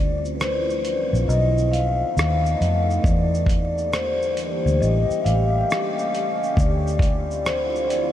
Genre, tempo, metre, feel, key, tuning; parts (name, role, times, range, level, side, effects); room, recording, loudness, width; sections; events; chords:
lo-fi hip hop; 68 BPM; 4/4; swing 65% on 16ths; D minor; A4 = 441 Hz
vibraphone with soft mallets; accompaniment; 0.0-8.1 s; B4 to F5; -23 LUFS; left 2 dB; cassette tape
deep dark ambient pad; sustained chords; 0.0-8.1 s; D3 to G4; -28 LUFS; right 1 dB; chorus, built-in reverb
vintage muted fingered electric bass; bass; 0.0-8.1 s; A1 to F2; -22 LUFS; equal
dusty soul sampler-style drum kit; drums; 0.3-8.1 s; hi-hat, kick drum, rim click, shaker; -25 LUFS; equal; vintage 12-bit sampler grit
moderate huge ambient reverb, RT60 7.6 s; dreamy mix soaked in reverb, vinyl crackle; -19 LUFS; side -12 dB against mid
0.0-8.1 A section
vibraphone solo 0.0-8.1
0.0 Dm9; 1.3 B7; 3.0 Em7b5; 4.8 Aaug7; 6.6 Dm9